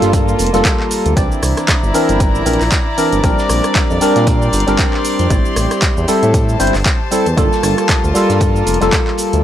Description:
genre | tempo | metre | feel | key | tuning
deep house | 116 BPM | 4/4 | swing 57% on 16ths | G dorian | A4 = 440 Hz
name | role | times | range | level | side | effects
percussive organ stab | stabs | 0.0-9.4 s | E3 to D5 | -16 LUFS | equal | wide subtle chorus, sidechain pumping, analog delay
smooth synth bass | bass | 0.0-9.4 s | F1 to Bb2 | -17 LUFS | equal | sidechain pumping
punchy analog drum machine | drums | 0.0-9.4 s | handclaps, hi-hat, rim click, shaker | -20 LUFS | right 1 dB | none
warm soul drum kit | drums | 0.0-9.3 s | hi-hat, snare drum | -31 LUFS | right 1 dB | none
impact | sound effects | 0.0-1.2 s | none | barely audible | none | none
rich chamber string section | texture | 0.0-9.4 s | Bb3 to C6 | -21 LUFS | left 1 dB | sidechain pumping
electronic kick drum | drums | 0.1-9.0 s | none | -16 LUFS | equal | none
room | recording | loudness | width
studio reverb | dry, gritty hardware recording | -12 LUFS | side -11 dB against mid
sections
0.0-9.4 A section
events
impact 0.0-1.2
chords
0.0 Gm9; 1.2 C9; 3.2 Bb69; 5.3 Am7; 7.4 Gm9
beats
0.13 0.65 | 1.17 1.68 2.20 2.72 | 3.24 3.75 4.27 4.79 | 5.30 5.82 6.34 6.86 | 7.37 7.89 8.41 8.93

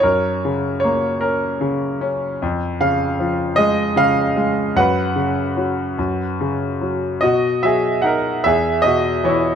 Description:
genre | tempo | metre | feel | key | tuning
classical, lyrical solo piano | 50 BPM (dotted quarters) | 6/8 | rubato | unclear | A4 = 440 Hz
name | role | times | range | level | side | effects
bright grand piano | solo | 0.0-9.6 s | E2 to F#5 | -16 LUFS | equal | none
room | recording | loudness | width
light reverb | close, detailed microphones | -16 LUFS | side -8 dB against mid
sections
0.0-7.2 A section; 7.2-9.6 B section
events
none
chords
0.0 F#; 2.4 C#/E#; 4.8 F#sus4; 7.2 B; 8.5 E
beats
| 0.03 1.23 | 2.42 3.59 | 4.77 5.97 | 7.22 8.46

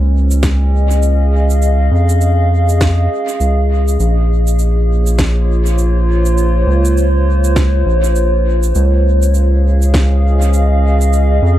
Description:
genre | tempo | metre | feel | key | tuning
ambient dub | 101 BPM | 4/4 | swing 60% on 16ths | unclear | A4 = 435 Hz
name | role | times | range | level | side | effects
warbly tape-like pad | sustained chords | 0.0-11.6 s | Bb3 to F5 | -18 LUFS | equal | chorus, built-in reverb
round analog bass | bass | 0.0-11.6 s | Bb1 to F2 | -11 LUFS | equal | none
electronic cabasa and snare drum | drums | 0.3-11.3 s | none | -23 LUFS | right 1 dB | dub echo
electronic kick drum | drums | 0.4-10.1 s | none | -17 LUFS | equal | none
room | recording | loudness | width
little or no reverb | echo-heavy mix | -11 LUFS | side -13 dB against mid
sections
0.0-11.6 A section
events
none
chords
0.0 Dbmaj7; 4.0 Bbm7; 8.8 Dbmaj7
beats
0.44 1.03 | 1.62 2.22 2.81 3.41 | 4.00 4.59 5.19 5.78 | 6.38 6.97 7.57 8.16 | 8.75 9.35 9.94 10.54 | 11.13

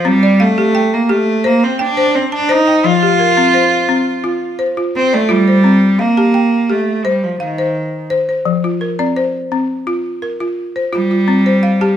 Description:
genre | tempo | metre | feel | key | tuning
west african traditional, West African string and xylophone music | 85 BPM | 4/4 | straight | C dorian | A4 = 440 Hz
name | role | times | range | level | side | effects
rich cello | melody | 0.0-12.0 s | Eb3 to F4 | -12 LUFS | right 1 dB | slapback echo
balafon | arpeggios | 0.0-12.0 s | F3 to A5 | -16 LUFS | left 2 dB | slapback echo
room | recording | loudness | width
moderate recital hall reverb, RT60 1.4 s | close, detailed microphones | -12 LUFS | side -10 dB against mid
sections
0.0-5.6 A section; 5.6-12.0 B section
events
cello solo 0.0-5.6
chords
0.0 C5; 2.8 F5; 5.6 Cm; 8.5 F5; 11.3 C5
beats
| 0.05 0.74 1.44 2.14 | 2.84 3.54 4.24 4.94 | 5.65 6.35 7.05 7.76 | 8.46 9.16 9.87 10.58 | 11.28

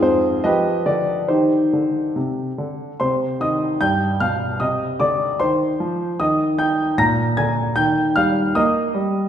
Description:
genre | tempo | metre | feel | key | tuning
classical-period piano sonatina | 69-76 BPM | 2/4 | rubato | C minor | A4 = 439 Hz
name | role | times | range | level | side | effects
clear concert grand piano | solo | 0.0-9.3 s | F2 to Bb6 | -17 LUFS | equal | none
room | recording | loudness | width
wet recital hall reverb, RT60 1.6 s | heard from further back in the room | -17 LUFS | side -9 dB against mid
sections
0.0-3.0 A section; 3.0-9.3 A section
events
none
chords
0.4 G7/F; 1.3 Cm; 3.8 G7; 4.6 Cm; 6.2 Eb; 7.0 Bb7; 7.8 Eb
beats
0.44 | 1.28 2.15 | 2.99 3.80 | 4.61 5.40 | 6.19 6.97 | 7.77 8.56

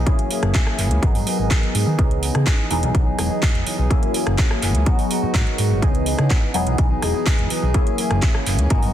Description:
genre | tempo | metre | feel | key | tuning
filtered disco house | 125 BPM | 4/4 | straight | unclear | A4 = 440 Hz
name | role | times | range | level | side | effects
funky polysynth comp | accompaniment | 0.0-8.9 s | E3 to A#4 | -24 LUFS | left 1 dB | chorus, phaser, sidechain pumping, low-pass filter
direct-recorded clean electric guitar | riff | 0.0-8.9 s | E3 to G#4 | -28 LUFS | right 3 dB | sidechain pumping, low-pass filter
hollow-body short-scale fingered electric bass | bass | 0.0-8.9 s | E1 to D#3 | -21 LUFS | equal | tube saturation, sidechain pumping, low-pass filter
electronic kick drum | drums | 0.1-8.8 s | none | -18 LUFS | equal | none
house drum kit | drums | 0.1-8.9 s | handclaps, hi-hat, rim click | -26 LUFS | right 1 dB | sidechain pumping on hats, sidechain pumping on cymbals
tambourine | percussion | 0.1-8.9 s | none | -56 LUFS | equal | none
room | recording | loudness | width
light reverb | dense, heavily limited modern master | -17 LUFS | side -11 dB against mid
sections
0.0-8.9 A section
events
filter sweep 0.0-8.9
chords
0.1 F#9; 1.0 G#m7; 2.0 C#m9; 2.7 Emaj7; 3.9 F#9; 4.9 G#m7; 5.8 C#m9; 6.5 Emaj7; 7.7 F#9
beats
| 0.07 0.55 1.03 1.51 | 1.99 2.47 2.95 3.43 | 3.91 4.39 4.87 5.35 | 5.83 6.31 6.79 7.27 | 7.75 8.23 8.71

